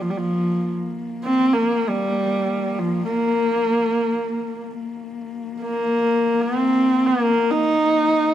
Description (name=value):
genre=mongolian traditional, Mongolian folk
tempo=free time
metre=none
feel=none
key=Bb zhi mode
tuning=A4 = 440 Hz
part: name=rich horsehead fiddle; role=melody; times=0.0-8.3 s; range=F3 to Eb4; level=-19 LUFS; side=equal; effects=none
part: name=dark horsehead fiddle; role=drone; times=0.0-8.3 s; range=Bb3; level=-28 LUFS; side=left 3 dB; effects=none
room=moderate concert hall reverb, RT60 2.2 s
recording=close, detailed microphones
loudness=-18 LUFS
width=side -11 dB against mid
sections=0.0-8.3 A section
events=none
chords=none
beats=free time